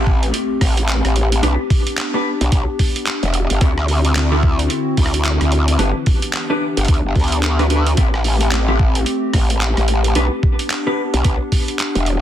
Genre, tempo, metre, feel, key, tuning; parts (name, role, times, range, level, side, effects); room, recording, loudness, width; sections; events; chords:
glitch hop; 110 BPM; 4/4; swing 60% on 16ths; A minor; A4 = 441 Hz
warbly tape-like pad; sustained chords; 0.0-12.2 s; D3 to G4; -23 LUFS; left 2 dB; chorus, built-in reverb, sidechain pumping
mellow electric guitar; stabs; 0.0-11.0 s; B3 to B4; -24 LUFS; equal; analog chorus, sidechain pumping, digital delay
growl bass; bass; 0.0-12.2 s; E1 to D2; -16 LUFS; equal; chorus
impact; sound effects; 0.4-1.4 s; -42 LUFS; equal
electronic kick drum; drums; 0.1-11.7 s; -16 LUFS; equal; small room ambience
boom bap sampler-style drum kit; drums; 0.2-12.2 s; handclaps, hi-hat, rim click; -23 LUFS; right 2 dB; soft clipping on snare, small room ambience
little or no reverb; dense, heavily limited modern master; -14 LUFS; side -11 dB against mid
0.0-12.2 A section
impact 0.0-1.4
0.0 Am7; 1.4 G; 3.6 D9; 5.8 Em7; 8.0 Am7; 10.2 G